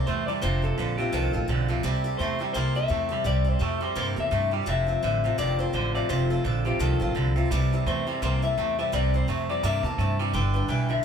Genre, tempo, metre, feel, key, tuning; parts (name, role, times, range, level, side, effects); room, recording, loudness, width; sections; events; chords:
rockabilly; 170 BPM; 4/4; swing 58% on 8ths; C mixolydian; A4 = 440 Hz
electric guitar through a small old amp; melody; 0.0-11.0 s; G4 to A5; -30 LUFS; left 6 dB
picked swing-style acoustic guitar; accompaniment; 0.0-11.0 s; C3 to C5; -32 LUFS; left 3 dB
twangy electric guitar; riff; 0.0-11.0 s; F2 to Bb3; -29 LUFS; right 6 dB
upright bass; bass; 0.1-11.0 s; F1 to G2; -26 LUFS; equal
moderate studio ambience, RT60 0.5 s; band playing live in one room; -23 LUFS; side -7 dB against mid
0.0-11.0 A section
0.4 F6; 1.8 C6; 4.7 F6; 7.5 C6; 10.3 G6